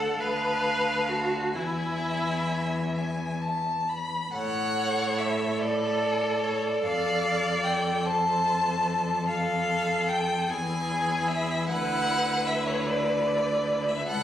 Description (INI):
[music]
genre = classical, slow romantic movement for string quartet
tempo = 42-51 BPM (dotted quarters)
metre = 6/8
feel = rubato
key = unclear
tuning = A4 = 440 Hz
[part]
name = rich violin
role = melody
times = 0.0-14.2 s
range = C#5 to B5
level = -28 LUFS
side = left 1 dB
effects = none
[part]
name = rich violin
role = second line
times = 0.0-14.2 s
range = G#4 to F#5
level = -32 LUFS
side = left 1 dB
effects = none
[part]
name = clear viola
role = accompaniment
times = 0.0-14.2 s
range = E4 to B4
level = -32 LUFS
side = right 1 dB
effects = none
[part]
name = rich cello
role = bass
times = 0.0-14.2 s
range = C#2 to A2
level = -31 LUFS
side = equal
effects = none
[sound]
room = wet recital hall reverb, RT60 1.4 s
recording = recorded on a phone in the room, club reverb, compression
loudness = -24 LUFS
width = side -11 dB against mid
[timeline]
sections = 0.0-4.3 A section; 4.3-14.2 B section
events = none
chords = 0.0 D; 1.6 E; 4.3 A; 6.8 F; 10.5 E; 11.7 E5/D